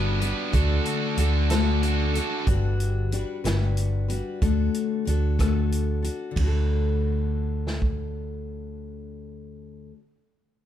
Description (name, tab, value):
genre	folk rock and heartland rock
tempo	62 BPM (dotted quarters)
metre	6/8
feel	straight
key	D major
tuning	A4 = 438 Hz
part	picked steel-string acoustic guitar	accompaniment	0.0-10.1 s	G2 to B4	-28 LUFS	left 5 dB	none
part	overdriven electric guitar	riff	0.0-2.5 s	D3 to B4	-28 LUFS	right 3 dB	spring reverb
part	hollow-body short-scale fingered electric bass	bass	0.0-9.9 s	G1 to D2	-25 LUFS	right 1 dB	none
part	vintage drum kit	drums	0.2-8.0 s	hi-hat, kick drum, ride cymbal, rim click, snare drum	-28 LUFS	right 1 dB	none
room	little or no reverb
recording	none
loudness	-22 LUFS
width	side -11 dB against mid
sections	0.0-6.4 A section; 6.4-10.3 B section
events	none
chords	0.0 Gmaj7; 0.5 D; 2.5 Gmaj7; 4.4 D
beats	| 0.53 1.50 | 2.47 3.44 | 4.41 5.39 | 6.36 7.33 | 8.30 9.28